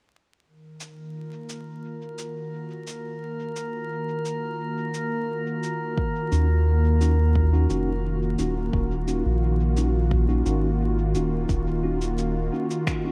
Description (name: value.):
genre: ambient dub.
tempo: 87 BPM.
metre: 4/4.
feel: straight.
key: Eb minor.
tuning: A4 = 440 Hz.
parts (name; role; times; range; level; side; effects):
warm analog pad; sustained chords; 0.5-13.1 s; Eb3 to Gb4; -31 LUFS; equal; chorus.
drifting glass-harmonics texture; texture; 1.2-11.5 s; Bb4; -36 LUFS; equal; chorus, built-in reverb.
electronic cabasa and finger snaps; drums; 0.8-13.0 s; none; -40 LUFS; equal; dub echo.
electronic kick drum; drums; 6.0-13.0 s; none; -30 LUFS; equal; none.
mellow tine electric piano; stabs; 6.3-13.1 s; Db4 to Gb4; -33 LUFS; equal; dub echo.
soft dub sub bass; bass; 6.3-12.5 s; Eb1 to Eb2; -25 LUFS; equal; none.
room: light reverb.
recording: vinyl crackle.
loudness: -24 LUFS.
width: mono.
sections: 0.5-11.5 A section; 11.5-13.1 B section.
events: filter sweep on analog synth pad 0.5-11.5.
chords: 0.5 Ebm7.